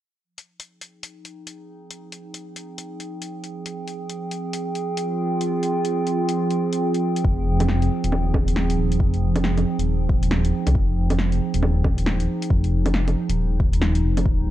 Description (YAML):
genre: future garage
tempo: 137 BPM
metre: 4/4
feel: swing 62% on 16ths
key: F minor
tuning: A4 = 441 Hz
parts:
  - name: warbly tape-like pad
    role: sustained chords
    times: 2.3-14.5 s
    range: Eb3 to G5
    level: -25 LUFS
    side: right 2 dB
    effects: chorus, built-in reverb, sidechain pumping
  - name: deep house drum kit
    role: drums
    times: 0.4-14.2 s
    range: bongos, hi-hat, snare drum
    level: -28 LUFS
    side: equal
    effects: overdrive
  - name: dark detuned saw bass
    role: bass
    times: 7.2-14.5 s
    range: Eb1 to C2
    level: -21 LUFS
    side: equal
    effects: sidechain pumping
  - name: electronic kick drum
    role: drums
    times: 7.2-14.4 s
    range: none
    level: -21 LUFS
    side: equal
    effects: overdrive
room: light reverb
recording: cassette tape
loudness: -19 LUFS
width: side -13 dB against mid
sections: 0.2-7.2 A section; 7.2-14.5 B section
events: fade-in on ambient pad 0.2-7.2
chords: 0.2 Fm7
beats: | 0.24 0.68 1.12 1.55 | 1.99 2.43 2.87 3.31 | 3.75 4.18 4.62 5.06 | 5.50 5.93 6.37 6.81 | 7.25 7.69 8.12 8.56 | 9.00 9.44 9.88 10.31 | 10.75 11.19 11.63 12.07 | 12.50 12.94 13.38 13.82 | 14.26